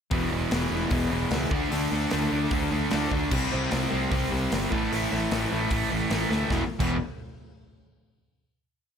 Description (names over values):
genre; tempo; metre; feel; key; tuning
punk rock; 150 BPM; 4/4; straight; unclear; A4 = 440 Hz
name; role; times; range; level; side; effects
distorted electric guitar; riff; 0.1-7.0 s; E2 to D4; -32 LUFS; equal; distortion
overdriven electric guitar; riff; 0.1-7.0 s; E2 to D4; -29 LUFS; right 9 dB; none
raw garage guitar; riff; 0.1-7.0 s; E2 to D4; -30 LUFS; left 12 dB; overdrive
picked electric bass; bass; 0.1-7.0 s; E1 to D2; -31 LUFS; equal; none
big rock drum kit; drums; 0.1-6.9 s; crash cymbal, hi-hat, kick drum, snare drum; -31 LUFS; equal; none
room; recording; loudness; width
little or no reverb; none; -24 LUFS; side -7 dB against mid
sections
0.1-6.5 riff; 6.5-8.1 final chord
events
drum fill 6.3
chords
0.1 E5; 1.5 D5; 3.3 C5; 4.7 A5; 6.5 E5